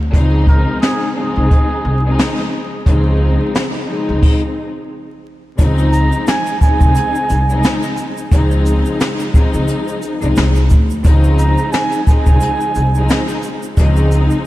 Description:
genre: hip hop, boom-bap hip-hop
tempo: 88 BPM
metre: 4/4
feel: swing 57% on 16ths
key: Db major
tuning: A4 = 442 Hz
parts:
  - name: upright bass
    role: bass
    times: 0.0-14.3 s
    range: C2 to D2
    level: -14 LUFS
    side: equal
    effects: none
  - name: dark studio string section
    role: accompaniment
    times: 0.1-14.5 s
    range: Db2 to Eb4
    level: -19 LUFS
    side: left 2 dB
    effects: high-pass filter, low-pass filter
  - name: jazz brush drum kit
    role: drums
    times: 0.1-14.3 s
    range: crash cymbal, hi-hat, kick drum, shaker, snare drum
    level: -14 LUFS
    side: equal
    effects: none
  - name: trumpet with cup mute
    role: melody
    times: 0.5-13.2 s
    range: Ab4 to Bb5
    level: -21 LUFS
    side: right 3 dB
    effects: high-pass filter, low-pass filter, ping-pong delay
  - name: tube shaker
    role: percussion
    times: 5.6-14.4 s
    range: none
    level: -38 LUFS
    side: right 8 dB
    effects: none
room: light reverb, small room ambience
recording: vinyl crackle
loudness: -12 LUFS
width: side -16 dB against mid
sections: 0.0-5.6 A section; 5.6-14.5 B section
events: stop 4.2-5.6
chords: 0.0 Dbmaj9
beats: | 0.14 0.82 1.50 2.18 | 2.86 3.54 4.23 4.91 | 5.59 6.27 6.95 7.64 | 8.32 9.00 9.68 10.36 | 11.04 11.73 12.41 13.09 | 13.77 14.45

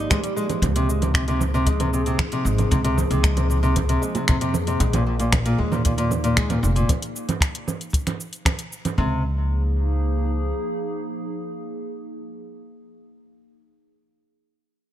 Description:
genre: folktronica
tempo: 115 BPM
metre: 4/4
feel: straight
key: Db major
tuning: A4 = 440 Hz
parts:
  - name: warbly tape-like pad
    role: sustained chords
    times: 0.0-12.6 s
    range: F3 to Ab4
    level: -30 LUFS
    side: right 1 dB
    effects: chorus, built-in reverb
  - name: nylon-string guitar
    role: arpeggios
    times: 0.0-9.2 s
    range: Bb2 to Ab3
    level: -24 LUFS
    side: left 1 dB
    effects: tape echo
  - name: upright bass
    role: bass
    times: 0.0-10.5 s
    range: F1 to F2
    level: -23 LUFS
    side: equal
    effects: tube saturation
  - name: kick drum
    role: drums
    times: 0.1-9.1 s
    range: none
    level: -23 LUFS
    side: equal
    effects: none
  - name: organic electronic drum kit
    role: drums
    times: 0.1-9.0 s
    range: cabasa, congas, finger snaps, hi-hat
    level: -26 LUFS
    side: right 3 dB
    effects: overdrive
room: small room ambience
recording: none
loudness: -20 LUFS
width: side -12 dB against mid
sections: 0.0-9.0 A section; 9.0-13.2 B section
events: none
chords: 0.0 Abmaj7(no3); 0.6 Dbmaj7; 4.8 Bb5; 6.9 N.C.; 9.0 Db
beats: 0.11 | 0.63 1.15 1.67 2.19 | 2.71 3.24 3.76 4.28 | 4.80 5.32 5.85 6.37 | 6.89 7.41 7.93 8.45 | 8.98 9.50 10.02 10.54 | 11.06 11.59 12.11 12.63

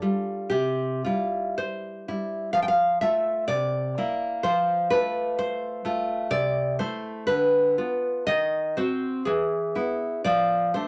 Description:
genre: romantic piece for solo classical guitar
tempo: 55-65 BPM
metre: 2/4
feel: rubato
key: A minor from 6.3 s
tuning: A4 = 440 Hz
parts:
  - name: nylon-string guitar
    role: solo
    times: 0.0-10.9 s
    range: C3 to G5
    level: -25 LUFS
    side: equal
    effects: none
room: moderate club reverb, RT60 0.6 s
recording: none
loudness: -25 LUFS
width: mono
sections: 0.0-10.9 A section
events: none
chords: 0.0 Fadd9/G; 0.5 C; 2.5 F; 3.5 C7; 4.4 F; 6.3 Am/C; 7.3 Bdim/D; 8.3 D#m6; 9.3 E; 10.2 Dm/F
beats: | 0.52 1.57 | 2.54 3.48 | 4.45 5.38 | 6.32 7.30 | 8.29 9.27 | 10.25

